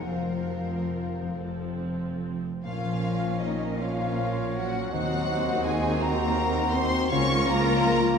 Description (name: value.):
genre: classical.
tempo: 45-56 BPM (dotted quarters).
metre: 6/8.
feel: rubato.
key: Bb minor.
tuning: A4 = 440 Hz.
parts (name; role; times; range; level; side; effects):
warm symphonic violin section; melody; 0.0-8.2 s; A4 to Db6; -33 LUFS; left 2 dB; none.
bright large flute ensemble; second line; 0.0-8.2 s; Eb5 to Db6; -35 LUFS; equal; none.
rich symphonic violin section; second line; 0.0-8.2 s; Eb4 to Db5; -35 LUFS; left 2 dB; none.
rich symphonic viola section; accompaniment; 0.0-8.2 s; F3 to F4; -34 LUFS; left 1 dB; none.
warm French horn section; sustained chords; 0.0-8.2 s; Eb3 to Db4; -33 LUFS; left 4 dB; none.
concert harp; arpeggios; 0.0-8.2 s; Bb2 to C6; -32 LUFS; left 4 dB; none.
clear symphonic double bass section; bass; 0.0-8.2 s; F1 to Eb2; -34 LUFS; right 4 dB; none.
rich symphonic cello section; bass; 0.0-8.2 s; Db2 to Bb2; -34 LUFS; right 2 dB; none.
clear clarinet; second line; 2.6-8.2 s; F4 to Bb4; -35 LUFS; left 1 dB; none.
bright trombone section; sustained chords; 2.6-8.2 s; Eb3 to Db4; -35 LUFS; right 2 dB; none.
mellow oboe; second line; 2.7-8.2 s; Bb4 to Db5; -40 LUFS; right 2 dB; none.
mellow bassoon; accompaniment; 3.8-8.2 s; Db4 to Gb4; -33 LUFS; right 3 dB; none.
room: wet concert hall reverb, RT60 2.6 s.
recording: dark, warm production.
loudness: -24 LUFS.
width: side -6 dB against mid.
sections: 0.0-2.7 A section; 2.7-8.2 B section.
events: none.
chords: 0.1 Fsus4; 1.4 F; 2.7 Bbm; 4.9 Cdim/Eb; 7.1 Bbm/Db.